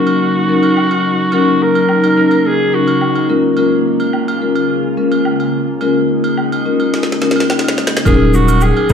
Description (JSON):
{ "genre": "afrobeats", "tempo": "107 BPM", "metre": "4/4", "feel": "straight", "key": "Eb minor", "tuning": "A4 = 440 Hz", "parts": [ { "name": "growling alto saxophone", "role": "melody", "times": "0.0-3.3, 8.1-8.9 s", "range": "Gb4 to Bb4", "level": "-16 LUFS", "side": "right 2 dB", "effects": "ping-pong delay" }, { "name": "marimba with medium mallets", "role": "accompaniment", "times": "0.0-8.9 s", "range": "Gb3 to Bb4", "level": "-14 LUFS", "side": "left 4 dB", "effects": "none" }, { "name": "glassy FM pad", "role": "sustained chords", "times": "0.0-8.0 s", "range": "Db3 to F4", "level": "-19 LUFS", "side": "right 2 dB", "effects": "ensemble chorus, built-in reverb" }, { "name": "agogo bells and woodblock", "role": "percussion", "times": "0.1-8.9 s", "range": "none", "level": "-24 LUFS", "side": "right 6 dB", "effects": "none" }, { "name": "afro-pop drum kit", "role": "drums", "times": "6.9-8.9 s", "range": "kick drum, rim click, shaker, snare drum", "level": "-16 LUFS", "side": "right 1 dB", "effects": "overdrive" }, { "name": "saturated sub bass", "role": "bass", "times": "8.1-8.9 s", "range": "Eb1 to Gb1", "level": "-13 LUFS", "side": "equal", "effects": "none" } ], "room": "light reverb, small room ambience", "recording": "played on a big sound system in a bare room, large studio reverb", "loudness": "-11 LUFS", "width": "side -7 dB against mid", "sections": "0.0-8.1 A section", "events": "drum fill 6.9-8.1", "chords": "0.0 Ebm7; 3.3 Bbm7; 8.1 Ebm7" }